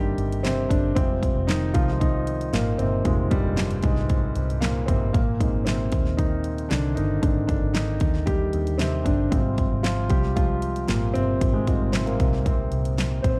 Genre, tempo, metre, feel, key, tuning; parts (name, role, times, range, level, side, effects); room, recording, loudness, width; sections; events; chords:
piano-driven pop; 115 BPM; 4/4; straight; A4 = 439 Hz
dark grand piano; accompaniment; 0.0-13.4 s; G2 to C5; -27 LUFS; equal
vintage muted fingered electric bass; bass; 0.0-13.4 s; F1 to Eb2; -28 LUFS; equal
pop drum kit; drums; 0.2-13.4 s; handclaps, hi-hat, kick drum, snare drum; -27 LUFS; equal
little or no reverb; dark, warm production; -23 LUFS; mono
0.0-13.4 A section
grand piano solo 0.0-13.4
0.0 Cm7; 1.0 Fmadd9; 5.1 Ab; 9.3 Fmadd9